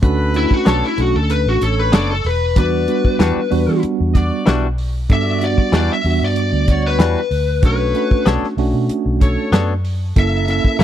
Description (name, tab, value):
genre	straight-eighth soul blues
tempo	95 BPM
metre	4/4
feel	straight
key	B minor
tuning	A4 = 440 Hz
part	tine electric piano	accompaniment	0.0-10.8 s	G3 to A4	-20 LUFS	right 5 dB	medium stereo tremolo
part	bright horn section	sustained chords	0.0-10.8 s	A#3 to D5	-28 LUFS	left 2 dB	none
part	vintage muted fingered electric bass	bass	0.0-10.8 s	E1 to E3	-18 LUFS	equal	none
part	warm soul drum kit	drums	0.0-10.8 s	hi-hat, kick drum, snare drum	-14 LUFS	equal	none
part	lead guitar through a small cranked amp	melody	0.4-10.8 s	E4 to E5	-20 LUFS	left 4 dB	overdrive
part	direct-recorded clean electric guitar	stabs	0.7-10.8 s	E3 to C#5	-21 LUFS	left 5 dB	lush chorus
room	little or no reverb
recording	dry, close 1970s-style studio recording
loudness	-14 LUFS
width	side -11 dB against mid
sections	0.0-10.8 A section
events	lead electric guitar solo 0.0-10.8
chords	0.0 Bm9; 2.6 Em9; 7.6 Bm9; 10.2 F#7#9